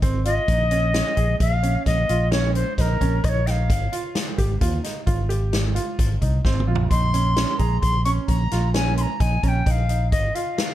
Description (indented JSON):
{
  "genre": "progressive instrumental, band music in an uneven meter",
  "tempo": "131 BPM",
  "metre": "7/4",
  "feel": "straight",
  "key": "Bb dorian",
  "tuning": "A4 = 440 Hz",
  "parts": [
    { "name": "clear baby grand piano", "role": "arpeggios", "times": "0.0-10.7 s", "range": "C4 to Ab4", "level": "-30 LUFS", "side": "right 5 dB", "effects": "digital delay" },
    { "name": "fingered electric bass", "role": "bass", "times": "0.0-10.3 s", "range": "Ab1 to Eb2", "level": "-22 LUFS", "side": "equal", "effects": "none" },
    { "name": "swinging big-band drum kit", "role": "drums", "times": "0.0-10.7 s", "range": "hi-hat, kick drum, snare drum, toms", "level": "-24 LUFS", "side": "equal", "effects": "none" },
    { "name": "bright reedy wooden flute", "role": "melody", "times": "0.2-10.7 s", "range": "Bb4 to Db6", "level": "-25 LUFS", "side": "left 2 dB", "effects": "digital delay" }
  ],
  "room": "light reverb",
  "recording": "dark, warm production",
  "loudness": "-19 LUFS",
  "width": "side -13 dB against mid",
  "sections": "0.0-10.7 A section",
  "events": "drum fill 6.4-6.9",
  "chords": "0.5 Bbm; 3.7 Ab5; 6.9 Bbmadd9; 10.1 Ab5",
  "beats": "0.02 | 0.48 0.94 1.40 1.86 2.32 2.77 3.23 | 3.69 4.15 4.61 5.07 5.53 5.99 6.45 | 6.91 7.37 7.82 8.28 8.74 9.20 9.66 | 10.12 10.58"
}